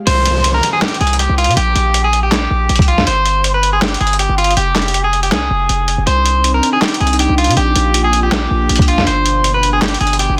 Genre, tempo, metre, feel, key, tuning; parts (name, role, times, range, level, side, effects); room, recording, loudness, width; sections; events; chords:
hip hop, trap; 160 BPM; 4/4; half-time; A4 = 440 Hz
airy breathy pad; sustained chords; 0.0-0.1, 6.1-10.4 s; B2 to G5; -23 LUFS; equal; chorus
electric guitar at the edge of break-up; melody; 0.1-10.3 s; F4 to C5; -18 LUFS; equal; delay
hard-hitting 808-style bass; bass; 0.1-10.4 s; F1 to C3; -19 LUFS; equal
lo-fi sampler-style drum kit; drums; 0.1-10.3 s; handclaps, hi-hat, kick drum, snare drum; -19 LUFS; equal; overdrive
downlifter; sound effects; 0.1-3.1 s; -28 LUFS; equal
little or no reverb; dense, heavily limited modern master; -14 LUFS; mono
0.1-10.4 A section
0.1 N.C.; 1.6 Bb5; 3.1 Gsus4; 4.6 Fmadd9; 6.1 Cmadd9; 7.6 Bb; 9.1 G